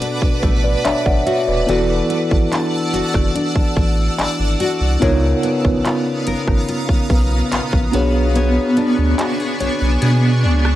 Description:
contemporary R&B; 72 BPM; 4/4; straight; B dorian; A4 = 440 Hz
mellow tine electric piano; accompaniment; 0.0-10.8 s; B3 to F#5; -21 LUFS; right 1 dB; medium stereo tremolo
granular cloud pad; sustained chords; 0.0-10.8 s; B3 to E6; -22 LUFS; right 1 dB; built-in reverb, tremolo, sidechain pumping
nylon-string guitar; arpeggios; 0.0-10.8 s; B2 to C#5; -22 LUFS; left 2 dB
trap drum kit; drums; 0.0-10.8 s; handclaps, hi-hat, kick drum, rim click; -19 LUFS; equal
warm sub bass; bass; 0.2-10.8 s; D#1 to B2; -18 LUFS; equal
little or no reverb; dry, gritty hardware recording; -14 LUFS; side -14 dB against mid
0.0-10.8 A section
kick muted 8.4-10.8
0.0 Bm7; 1.7 E9sus4; 5.0 C#13; 7.9 Bm69

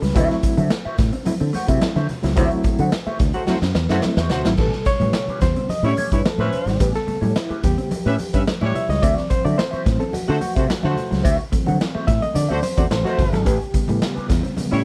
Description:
funk; 108 BPM; 4/4; straight; A4 = 440 Hz
mellow electric guitar; accompaniment; 0.0-14.8 s; C#4 to F#5; -30 LUFS; equal; wah
mellow electric guitar; riff; 0.0-14.8 s; F#3 to C#4; -30 LUFS; equal; subtle chorus
overdriven reed electric piano; stabs; 0.0-14.8 s; B2 to E5; -27 LUFS; equal; fast tremolo
fingered electric bass; bass; 0.0-14.8 s; G1 to D3; -24 LUFS; equal
raw garage drum kit; drums; 0.0-14.8 s; crash cymbal, hi-hat, kick drum, snare drum; -25 LUFS; equal
congas; percussion; 0.2-14.7 s; -33 LUFS; equal
dark horn section; second line; 3.3-14.8 s; G3 to E5; -27 LUFS; equal
light reverb; -20 LUFS; mono
0.0-4.6 A section; 4.6-14.8 B section
band accent 2.4-4.6; drum fill 3.5-4.6; reed electric piano solo 4.6-14.8
0.2 D9; 4.6 A9; 9.0 D9; 13.5 A9

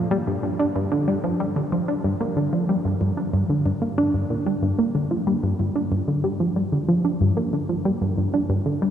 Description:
ambient; 93 BPM; 4/4; straight; G minor from 4.6 s; A4 = 440 Hz
tight sequenced synth; solo; 0.0-8.9 s; G2 to D4; -20 LUFS; equal; chorus, tape echo
wet cathedral reverb, RT60 6.5 s; in a vast, echoing space; -20 LUFS; side -9 dB against mid
0.0-4.6 A section; 4.6-8.9 B section

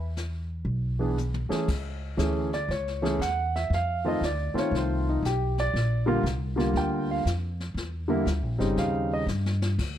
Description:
jazz piano trio; 118 BPM; 4/4; swing 66% on 8ths; A4 = 439 Hz
upright bass; bass; 0.0-10.0 s; G1 to G2; -28 LUFS; equal
jazz brush drum kit; drums; 0.2-10.0 s; brushed snare drum, crash cymbal, hi-hat, kick drum, snare drum, toms; -36 LUFS; left 3 dB
warm concert grand piano; melody; 1.0-9.2 s; C#3 to G5; -27 LUFS; right 1 dB; plate reverb
light reverb; dark, warm production; -25 LUFS; side -10 dB against mid
0.0-1.7 A section; 1.7-10.0 B section
drum fill 1.2-1.7, 9.3-9.8
0.0 E5; 1.7 Amaj7; 3.7 F7; 5.7 Bb6; 7.8 Em7b5; 8.8 D#6

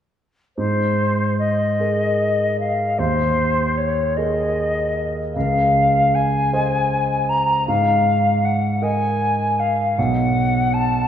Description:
classical, impressionist duo for flute and grand piano; 51 BPM (dotted quarters); 6/8; rubato; Ab major; A4 = 440 Hz
silver concert flute; melody; 0.6-11.1 s; C5 to Bb5; -19 LUFS; left 2 dB
clear concert grand piano; accompaniment; 0.6-11.1 s; B1 to Eb5; -20 LUFS; right 1 dB
wet scoring stage reverb, RT60 2.1 s; heard from further back in the room; -17 LUFS; side -9 dB against mid
0.6-11.1 A section
0.6 Abadd9; 3.0 Ebsus4; 5.4 Dbmaj9; 7.7 Absus2; 10.0 B7(no3)

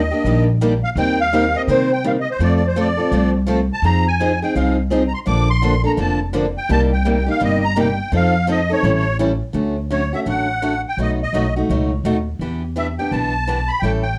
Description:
acoustic string swing (jazz manouche); 168 BPM; 4/4; swing 62% on 8ths; D major from 9.5 s; A4 = 440 Hz
musette accordion; melody; 0.0-14.2 s; C5 to D6; -23 LUFS; equal; slapback echo
upright bass; bass; 0.0-14.2 s; F1 to C3; -22 LUFS; equal
picked steel-string acoustic guitar; accompaniment; 0.1-14.0 s; B2 to Bb4; -24 LUFS; equal
picked steel-string acoustic guitar; accompaniment; 0.3-9.3 s; C3 to C5; -27 LUFS; equal
wet club reverb, RT60 0.5 s; worn, warbling old tape, cassette tape, warbly pitch drift; -18 LUFS; mono
0.0-9.5 A section; 9.5-14.2 B section
0.0 Ebmaj7; 1.0 Cm7/Eb; 2.4 F; 3.8 Fm7; 5.3 Bbmaj7; 6.7 Cm7; 8.1 F7; 8.8 A7; 9.5 Dmaj7; 11.0 B7; 12.4 Em7

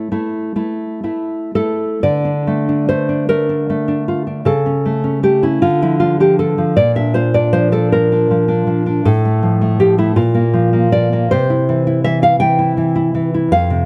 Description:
romantic piece for solo classical guitar; 37-56 BPM (dotted quarters); 6/8; rubato; D minor; A4 = 440 Hz
nylon-string guitar; solo; 0.0-13.9 s; F2 to G5; -15 LUFS; equal
light reverb; close, detailed microphones; -15 LUFS; mono
0.0-2.0 A section; 2.0-13.9 B section
0.0 A; 2.0 D5; 4.5 A/C#; 5.6 Dm; 6.8 Bb; 9.1 F/A; 10.2 Bb5; 11.3 C

